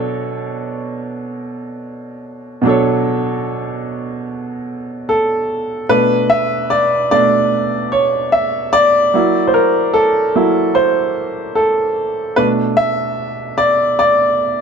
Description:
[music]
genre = R&B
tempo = 74 BPM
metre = 4/4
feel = swing 60% on 16ths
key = B minor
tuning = A4 = 439 Hz
[part]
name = clear upright piano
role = solo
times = 0.0-14.6 s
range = B2 to E5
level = -14 LUFS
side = right 1 dB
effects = none
[sound]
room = light reverb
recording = none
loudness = -13 LUFS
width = side -6 dB against mid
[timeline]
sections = 0.0-5.9 A section; 5.9-14.6 A section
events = upright piano solo 5.9-14.6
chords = 0.0 Bm9; 5.9 Bm7; 9.1 F#7alt; 12.4 Bm7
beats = 0.20 1.01 1.83 | 2.64 3.45 4.26 5.07 | 5.88 6.69 7.50 8.31 | 9.12 9.93 10.74 11.56 | 12.37 13.18 13.99

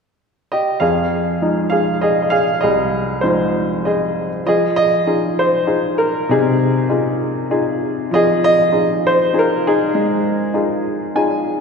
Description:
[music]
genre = folk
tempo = 98 BPM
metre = 3/4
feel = straight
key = F minor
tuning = A4 = 435 Hz
[part]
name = clear upright piano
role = melody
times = 0.5-11.6 s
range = C2 to Ab5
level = -14 LUFS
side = equal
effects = none
[sound]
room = wet concert hall reverb, RT60 2.4 s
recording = recorded in a church or concert hall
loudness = -14 LUFS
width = side -5 dB against mid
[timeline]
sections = 0.8-4.5 A section; 4.5-11.6 B section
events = upright piano fill 10.9-11.6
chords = 0.0 N.C.; 0.8 Fm7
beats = 0.19 | 0.80 1.41 2.02 | 2.63 3.24 3.85 | 4.46 5.08 5.69 | 6.30 6.91 7.51 | 8.12 8.73 9.34 | 9.95 10.55 11.16

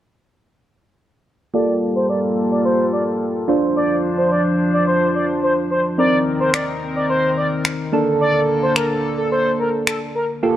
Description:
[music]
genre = dance-pop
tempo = 108 BPM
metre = 4/4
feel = straight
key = G minor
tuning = A4 = 440 Hz
[part]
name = expressive synth lead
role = melody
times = 1.5-10.2 s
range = A4 to D5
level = -20 LUFS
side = equal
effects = chorus, low-pass filter
[part]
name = soft electric-piano-like synth keys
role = accompaniment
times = 1.5-10.6 s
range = Bb3 to C5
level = -21 LUFS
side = right 2 dB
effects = chorus, low-pass filter
[part]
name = chorused pulse-width pad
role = sustained chords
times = 1.5-10.4 s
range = D3 to C5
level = -22 LUFS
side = left 1 dB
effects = low-pass filter
[part]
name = electronic finger snaps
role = drums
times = 6.5-10.0 s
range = none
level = -22 LUFS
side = left 1 dB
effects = none
[sound]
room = light reverb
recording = dark, warm production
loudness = -16 LUFS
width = side -12 dB against mid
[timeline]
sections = 1.5-10.4 A section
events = filter sweep 1.5-10.4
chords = 1.5 Gm9; 3.5 Dm7; 6.0 Cm7; 7.9 Bbmaj7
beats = | 1.54 2.10 2.65 3.21 | 3.76 4.32 4.87 5.43 | 5.99 6.54 7.10 7.65 | 8.21 8.76 9.32 9.87 | 10.43

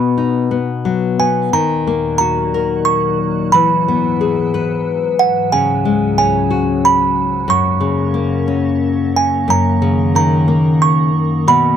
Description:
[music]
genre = children's music, lullaby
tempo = 90 BPM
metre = 3/4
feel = rubato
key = unclear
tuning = A4 = 440 Hz
[part]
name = music box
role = melody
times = 0.0-11.8 s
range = F#5 to C#6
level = -16 LUFS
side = right 6 dB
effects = none
[part]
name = nylon-string guitar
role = accompaniment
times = 0.0-11.8 s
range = F#2 to B4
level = -16 LUFS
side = left 6 dB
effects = none
[part]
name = icy glass pad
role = sustained chords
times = 1.8-11.8 s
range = C#2 to C#4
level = -19 LUFS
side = equal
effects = chorus, built-in reverb
[sound]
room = light reverb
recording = dry, close 1970s-style studio recording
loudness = -13 LUFS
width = side -8 dB against mid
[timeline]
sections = 0.0-1.5 A section; 1.5-11.8 B section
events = none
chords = 0.0 B; 1.5 D#m; 3.5 Eadd9; 5.5 C#sus4; 7.5 F#; 9.5 F#6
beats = 0.18 0.85 | 1.54 2.21 2.88 | 3.54 4.21 4.86 | 5.51 6.17 6.83 | 7.48 8.15 8.81 | 9.49 10.15 10.81 | 11.48

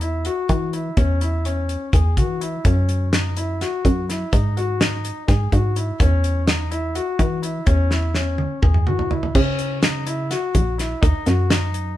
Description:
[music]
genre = progressive instrumental, band music in an uneven meter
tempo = 251 BPM (eighths)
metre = 7/8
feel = straight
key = C# dorian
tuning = A4 = 436 Hz
[part]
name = warm concert grand piano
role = arpeggios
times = 0.0-11.9 s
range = C#4 to G#4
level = -26 LUFS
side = left 3 dB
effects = none
[part]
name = plucky analog bass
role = bass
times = 0.0-12.0 s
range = A#1 to E3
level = -20 LUFS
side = equal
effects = none
[part]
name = damped 70s drum kit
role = drums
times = 0.0-11.9 s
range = crash cymbal, hi-hat, kick drum, snare drum, toms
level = -20 LUFS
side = equal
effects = none
[sound]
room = light reverb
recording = band playing live in one room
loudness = -18 LUFS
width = side -14 dB against mid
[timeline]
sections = 0.0-9.3 A section; 9.3-12.0 B section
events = drum fill 7.9-9.3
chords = 0.0 Esus2; 1.0 C#m/E; 2.6 F#5; 4.3 G#5; 6.0 Esus2; 7.7 C#m/E; 9.3 C#m; 11.0 D#m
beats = 0.01 0.25 0.49 0.73 | 0.97 1.21 1.45 1.69 1.93 2.17 2.41 | 2.65 2.89 3.12 3.37 3.60 3.84 4.08 | 4.32 4.56 4.80 5.04 5.28 5.52 5.76 | 6.00 6.24 6.48 6.72 6.96 7.20 7.43 | 7.67 7.91 8.15 8.39 8.63 8.87 9.11 | 9.35 9.59 9.83 10.07 10.31 10.55 10.79 | 11.03 11.27 11.50 11.74

